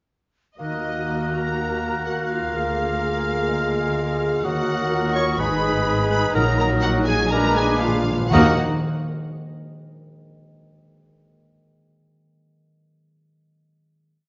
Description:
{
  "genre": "classical, dramatic, fast romantic movement for symphony orchestra",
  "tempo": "124 BPM",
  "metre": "4/4",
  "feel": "straight",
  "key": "Eb minor",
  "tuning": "A4 = 440 Hz",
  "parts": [
    { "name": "warm symphonic violin section", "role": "melody", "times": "0.6-8.6 s", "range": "Eb5 to Db6", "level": "-32 LUFS", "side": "equal", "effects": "none" },
    { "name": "clear oboe", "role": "second line", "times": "0.6-8.5 s", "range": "Ab4 to Cb5", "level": "-32 LUFS", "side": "equal", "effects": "none" },
    { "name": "concert flute", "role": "second line", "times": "0.6-8.6 s", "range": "D6 to Gb6", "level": "-33 LUFS", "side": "equal", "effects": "none" },
    { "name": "rich studio violin section", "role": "second line", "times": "0.6-8.6 s", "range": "Gb4 to Db6", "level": "-35 LUFS", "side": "equal", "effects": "none" },
    { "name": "warm clarinet", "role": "second line", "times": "0.6-8.5 s", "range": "Eb4 to Db5", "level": "-31 LUFS", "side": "equal", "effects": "none" },
    { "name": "clear bassoon", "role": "accompaniment", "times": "0.6-8.5 s", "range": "Gb3 to Bb3", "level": "-32 LUFS", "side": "equal", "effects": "none" },
    { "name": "warm symphonic viola section", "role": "accompaniment", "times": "0.6-8.6 s", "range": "Gb3 to Ab4", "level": "-31 LUFS", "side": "equal", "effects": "none" },
    { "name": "dark French horn section", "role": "sustained chords", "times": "0.6-8.5 s", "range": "Gb3 to Ab4", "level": "-31 LUFS", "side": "equal", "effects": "none" },
    { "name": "concert harp", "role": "arpeggios", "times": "0.6-8.6 s", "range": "Ab2 to Eb5", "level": "-32 LUFS", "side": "equal", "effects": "none" },
    { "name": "rich studio double bass section", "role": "bass", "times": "0.6-8.6 s", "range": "Ab1 to Eb2", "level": "-32 LUFS", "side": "equal", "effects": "none" },
    { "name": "warm symphonic cello section", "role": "bass", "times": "0.6-8.6 s", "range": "D2 to Bb2", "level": "-31 LUFS", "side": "equal", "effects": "none" },
    { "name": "timpani", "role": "percussion", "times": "4.4-8.6 s", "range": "Bb2 to Eb3", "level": "-31 LUFS", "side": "equal", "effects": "none" }
  ],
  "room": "wet recital hall reverb, RT60 1.8 s",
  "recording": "nothing above 7.5 kHz",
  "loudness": "-21 LUFS",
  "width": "mono",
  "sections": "0.6-8.3 A section; 8.3-10.3 final chord",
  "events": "timpani fill 7.3-8.3",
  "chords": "0.6 Ebm; 2.5 Bb7/D; 4.4 Ebm; 5.4 Abm; 6.4 Ebm/Bb; 7.3 Bb7b9; 8.3 Eb5"
}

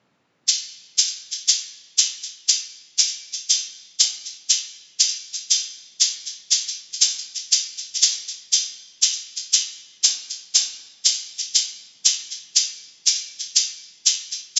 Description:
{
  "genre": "west african traditional",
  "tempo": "119 BPM (dotted quarters)",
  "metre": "12/8",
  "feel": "straight",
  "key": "none",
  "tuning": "none",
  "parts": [
    { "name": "tube shaker", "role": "percussion", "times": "0.5-14.6 s", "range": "none", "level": "-19 LUFS", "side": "equal", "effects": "none" }
  ],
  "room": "moderate recital hall reverb, RT60 1.5 s",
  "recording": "recorded on a phone in the room, club reverb, compression, nothing above 7.8 kHz",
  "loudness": "-21 LUFS",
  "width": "mono",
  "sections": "0.5-14.6 A section",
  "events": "none",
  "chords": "none"
}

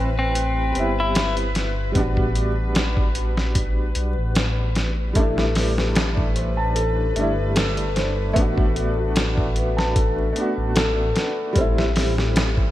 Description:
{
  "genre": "trip hop",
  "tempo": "75 BPM",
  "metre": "4/4",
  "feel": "swing 54% on 16ths",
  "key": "A dorian",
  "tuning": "A4 = 445 Hz",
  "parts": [
    { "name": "clean electric guitar", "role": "melody", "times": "0.0-1.3 s", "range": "C4 to E4", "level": "-25 LUFS", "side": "left 2 dB", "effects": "vintage 12-bit sampler grit, tape echo" },
    { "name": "clear upright piano", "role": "accompaniment", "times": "0.0-12.7 s", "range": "G3 to B4", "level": "-26 LUFS", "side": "equal", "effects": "tremolo, tape echo" },
    { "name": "dark detuned saw bass", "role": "bass", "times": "0.0-12.7 s", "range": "G1 to B1", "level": "-23 LUFS", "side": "equal", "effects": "none" },
    { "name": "bowed-like drone", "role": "texture", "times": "0.0-12.7 s", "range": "B4", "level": "-32 LUFS", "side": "left 4 dB", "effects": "built-in reverb, phaser" },
    { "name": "dusty soul sampler-style drum kit", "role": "drums", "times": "0.4-12.7 s", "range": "hi-hat, kick drum, snare drum", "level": "-23 LUFS", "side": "equal", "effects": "none" },
    { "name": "felt-muted upright piano", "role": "arpeggios", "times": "5.2-12.7 s", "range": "F#4 to A5", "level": "-27 LUFS", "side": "left 1 dB", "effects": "lush chorus, tape echo" }
  ],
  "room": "moderate plate reverb, RT60 2.5 s",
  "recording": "bright 1980s-style digital production, vinyl crackle",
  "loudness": "-19 LUFS",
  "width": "side -14 dB against mid",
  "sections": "0.0-12.7 A section",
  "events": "none",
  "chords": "0.0 Am7; 2.0 A13sus4; 5.2 C69/A; 8.4 Bm7/A; 11.6 Am7"
}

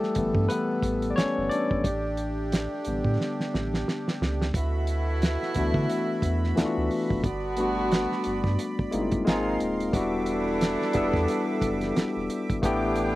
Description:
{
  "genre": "R&B, neo-soul",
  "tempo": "89 BPM",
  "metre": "4/4",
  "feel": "swing 58% on 16ths",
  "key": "unclear",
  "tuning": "A4 = 441 Hz",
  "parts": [
    { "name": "barky tine electric piano", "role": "accompaniment", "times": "0.0-13.2 s", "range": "D3 to D5", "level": "-27 LUFS", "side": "left 2 dB", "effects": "overdrive" },
    { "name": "accordion", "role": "sustained chords", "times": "0.0-13.2 s", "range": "E3 to D6", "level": "-35 LUFS", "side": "right 3 dB", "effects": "light tremolo tuning" },
    { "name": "cloth-damped thuddy drum kit", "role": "drums", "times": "0.0-13.1 s", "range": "hi-hat, kick drum, snare drum", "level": "-28 LUFS", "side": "right 1 dB", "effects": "none" },
    { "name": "round analog bass", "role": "bass", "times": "0.2-13.2 s", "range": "D#1 to D3", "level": "-30 LUFS", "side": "right 1 dB", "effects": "none" },
    { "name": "mellow saxophone section", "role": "stabs", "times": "4.5-13.2 s", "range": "B2 to A4", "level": "-31 LUFS", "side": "right 1 dB", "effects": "none" }
  ],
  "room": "little or no reverb",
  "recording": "recorded outdoors, with no room sound",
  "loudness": "-24 LUFS",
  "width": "side -17 dB against mid",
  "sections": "0.0-4.5 A section; 4.5-13.2 A section",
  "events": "tine electric piano solo 0.0-4.5; drum fill 3.2-4.5",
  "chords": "0.0 G69; 1.8 A7sus4; 4.5 D69; 7.2 Gmaj7; 9.3 G#69; 9.9 Em7; 12.6 A7sus4"
}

